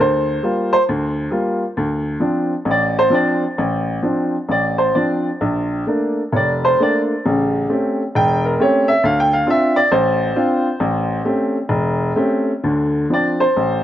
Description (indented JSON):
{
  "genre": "solo jazz",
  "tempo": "133 BPM",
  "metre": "4/4",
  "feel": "swing 66% on 8ths, rubato",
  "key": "D minor",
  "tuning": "A4 = 440 Hz",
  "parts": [
    { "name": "warm upright piano", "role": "solo", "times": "0.0-13.8 s", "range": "E1 to G5", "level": "-15 LUFS", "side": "equal", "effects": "none" }
  ],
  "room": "moderate spring reverb, RT60 2.5 s",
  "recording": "worn, warbling old tape, cassette tape, warbly pitch drift",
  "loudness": "-15 LUFS",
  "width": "side -12 dB against mid",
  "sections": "0.0-12.6 A section; 12.6-13.8 A section",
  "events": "upright piano solo 0.0-13.8",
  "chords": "0.0 Gm7; 1.8 Dm7; 5.4 Bbmaj7; 7.3 A7#9; 9.0 Dm7; 10.8 A7#9; 12.6 Dm7"
}